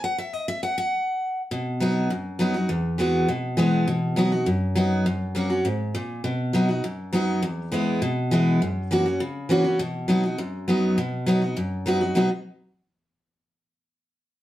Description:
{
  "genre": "bluegrass",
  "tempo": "203 BPM",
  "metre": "4/4",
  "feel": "straight",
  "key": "B major",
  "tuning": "A4 = 445 Hz",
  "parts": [
    { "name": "picked steel-string acoustic guitar", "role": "solo", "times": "0.0-12.3 s", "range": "E2 to F#5", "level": "-22 LUFS", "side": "equal", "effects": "none" }
  ],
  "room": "moderate studio reverb, RT60 0.6 s",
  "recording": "heard from further back in the room",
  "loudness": "-22 LUFS",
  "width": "side -14 dB against mid",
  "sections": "0.0-1.5 A section; 1.5-11.0 B section; 11.0-12.2 C section; 12.2-13.3 D section",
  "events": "steel-string acoustic guitar solo 0.0-1.5",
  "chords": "0.0 N.C.; 1.5 B; 2.7 Eadd9; 3.9 B; 5.1 F#; 6.2 B; 7.4 E; 8.6 F#7; 9.8 B",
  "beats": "0.04 | 0.33 0.63 0.92 1.22 | 1.51 1.81 2.10 2.40 | 2.70 2.99 3.29 3.58 | 3.88 4.17 4.47 4.77 | 5.06 5.36 5.65 5.95 | 6.24 6.54 6.84 7.13 | 7.43 7.72 8.02 8.31 | 8.61 8.91 9.20 9.50 | 9.79 10.09 10.38 10.68 | 10.98 11.27 11.57 11.86 | 12.16"
}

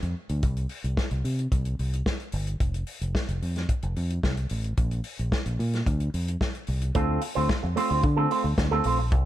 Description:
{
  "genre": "disco",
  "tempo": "110 BPM",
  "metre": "4/4",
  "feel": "straight",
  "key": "D minor",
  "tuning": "A4 = 438 Hz",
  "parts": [
    { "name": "fingered electric bass", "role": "bass", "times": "0.0-9.3 s", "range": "F1 to D3", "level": "-26 LUFS", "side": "equal", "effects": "none" },
    { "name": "warm soul drum kit", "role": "drums", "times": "0.0-9.2 s", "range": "hi-hat, kick drum, snare drum", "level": "-28 LUFS", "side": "equal", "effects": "none" },
    { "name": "electric guitar with an envelope filter", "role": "accompaniment", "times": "6.9-9.2 s", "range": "A3 to C5", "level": "-26 LUFS", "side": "right 3 dB", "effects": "none" }
  ],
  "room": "little or no reverb",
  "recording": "none",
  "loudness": "-24 LUFS",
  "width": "side -13 dB against mid",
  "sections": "0.0-6.9 A section; 6.9-9.3 B section",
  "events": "none",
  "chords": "0.4 C5; 2.6 N.C.; 5.9 Dm7",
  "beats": "| 0.43 0.97 1.51 2.06 | 2.60 3.15 3.69 4.23 | 4.78 5.32 5.86 6.41 | 6.95 7.49 8.04 8.58 | 9.12"
}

